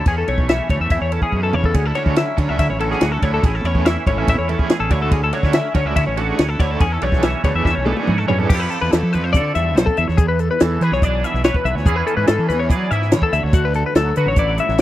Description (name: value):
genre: math rock and midwest emo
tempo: 143 BPM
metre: 4/4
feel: straight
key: A major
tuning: A4 = 440 Hz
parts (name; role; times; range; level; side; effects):
- twangy electric guitar; accompaniment; 0.0-14.8 s; E2 to B4; -26 LUFS; right 10 dB; analog chorus
- twelve-string electric guitar; arpeggios; 0.0-14.8 s; F#4 to E5; -21 LUFS; left 5 dB; spring reverb
- fuzz fingered electric bass; bass; 0.1-14.8 s; G#1 to F#3; -21 LUFS; equal; overdrive
- compact cocktail drum kit; drums; 0.1-14.8 s; crash cymbal, hi-hat, kick drum, ride cymbal, snare drum, toms; -17 LUFS; equal; none
- overdriven electric guitar; riff; 2.0-8.5 s; D3 to A4; -25 LUFS; right 3 dB; tremolo
room: little or no reverb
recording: dry, close 1970s-style studio recording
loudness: -15 LUFS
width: side -14 dB against mid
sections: 0.0-8.5 A section; 8.5-14.8 B section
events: drum fill 1.3-1.8, 7.7-8.5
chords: 0.1 Esus4; 0.9 Amaj9/E; 1.8 Dmaj9; 3.4 Amaj7; 4.9 Dmaj9; 6.8 E13sus4; 8.5 Fmaj9; 10.0 E7; 11.9 Amaj9/E; 13.3 D69